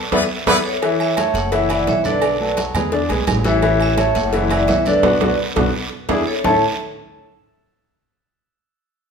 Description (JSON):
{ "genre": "latin, salsa", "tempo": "171 BPM", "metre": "4/4", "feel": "straight", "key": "A major", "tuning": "A4 = 438 Hz", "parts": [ { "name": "brilliant horn section", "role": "melody", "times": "0.1-0.6 s", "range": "B3 to B4", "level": "-21 LUFS", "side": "equal", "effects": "none" }, { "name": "clear baby grand piano", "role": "accompaniment", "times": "0.1-6.6 s", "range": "D3 to A5", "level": "-20 LUFS", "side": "left 3 dB", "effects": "none" }, { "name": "upright bass", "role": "bass", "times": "0.1-6.6 s", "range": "F#1 to E2", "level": "-24 LUFS", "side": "right 1 dB", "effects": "none" }, { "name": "congas", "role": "percussion", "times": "0.1-6.5 s", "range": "none", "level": "-27 LUFS", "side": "left 1 dB", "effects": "none" }, { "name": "cowbell and bongos", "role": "percussion", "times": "0.1-6.5 s", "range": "none", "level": "-26 LUFS", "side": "left 3 dB", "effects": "none" }, { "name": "guiro", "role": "percussion", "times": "0.1-6.5 s", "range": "none", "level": "-31 LUFS", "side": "right 4 dB", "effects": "none" }, { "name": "timbales and agogo bells", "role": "percussion", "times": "0.1-6.5 s", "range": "none", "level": "-25 LUFS", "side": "right 7 dB", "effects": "none" }, { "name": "vibraphone with hard mallets", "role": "melody", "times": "0.7-6.6 s", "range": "A4 to F#5", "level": "-21 LUFS", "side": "right 2 dB", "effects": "none" } ], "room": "wet large studio reverb, RT60 1.2 s", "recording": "minimal, uncompressed stereo recording", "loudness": "-15 LUFS", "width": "side -6 dB against mid", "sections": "0.8-6.4 A section; 6.4-7.9 B section", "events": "drum fill 0.0-0.8, 5.6-6.4; band accent 0.0-0.8, 5.0-6.4", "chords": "0.1 E7; 0.8 A; 1.5 F#5; 2.2 Bm7; 2.9 E7; 3.6 A; 4.3 F#5; 5.0 Bm; 5.7 E7; 6.4 A5", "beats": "0.12 0.47 | 0.82 1.17 1.52 1.88 | 2.23 2.58 2.93 3.28 | 3.63 3.99 4.34 4.69 | 5.04 5.39 5.75 6.10 | 6.45" }